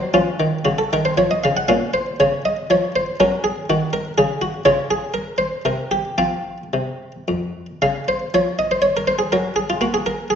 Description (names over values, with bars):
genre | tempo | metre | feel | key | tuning
classical, baroque-style suite movement for harpsichord | 108-124 BPM | 3/4 | rubato | F minor from 4.7 s | A4 = 440 Hz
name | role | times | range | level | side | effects
buff-stop harpsichord | solo | 0.0-10.4 s | F2 to Gb5 | -17 LUFS | equal | none
room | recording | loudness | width
wet recital hall reverb, RT60 1.4 s | nothing above 7.5 kHz | -17 LUFS | side -8 dB against mid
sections
0.0-7.8 A section; 7.8-10.4 A section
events
none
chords
0.1 Dbadd9; 1.7 Bbm; 3.2 Gb5; 4.7 Dbmaj7; 5.7 N.C.; 6.2 F5; 7.8 Dbmaj7; 9.3 Gb